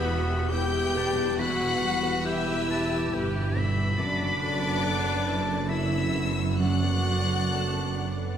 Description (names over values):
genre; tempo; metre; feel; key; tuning
cinematic, emotional film score for orchestra; 64-71 BPM; 3/4; rubato; E minor; A4 = 440 Hz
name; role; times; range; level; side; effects
rich studio violin section; melody; 0.0-8.4 s; B5 to G6; -34 LUFS; left 4 dB; none
clear oboe; second line; 0.0-8.4 s; D5 to B5; -35 LUFS; equal; none
warm clarinet; second line; 0.0-8.4 s; B3 to G4; -34 LUFS; equal; none
warm studio violin section; second line; 0.0-8.4 s; B4 to G5; -35 LUFS; left 4 dB; none
clear studio viola section; accompaniment; 0.0-8.4 s; D4 to E5; -37 LUFS; equal; none
felt-muted upright piano; accompaniment; 0.0-8.4 s; E2 to A4; -35 LUFS; equal; none
mellow French horn section; sustained chords; 0.0-8.4 s; B3 to G4; -34 LUFS; left 2 dB; none
concert harp; arpeggios; 0.0-8.4 s; E2 to E5; -37 LUFS; left 6 dB; none
rich studio double bass section; bass; 0.0-8.4 s; E1 to G1; -30 LUFS; right 3 dB; none
warm studio cello section; bass; 0.0-8.4 s; E2 to G2; -32 LUFS; right 3 dB; none
flute section; second line; 7.5-8.4 s; F#5 to A5; -42 LUFS; left 3 dB; none
room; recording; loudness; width
wet scoring stage reverb, RT60 1.6 s; none; -24 LUFS; side -9 dB against mid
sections
0.0-8.4 A section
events
none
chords
0.0 Em; 4.0 Bm7/F#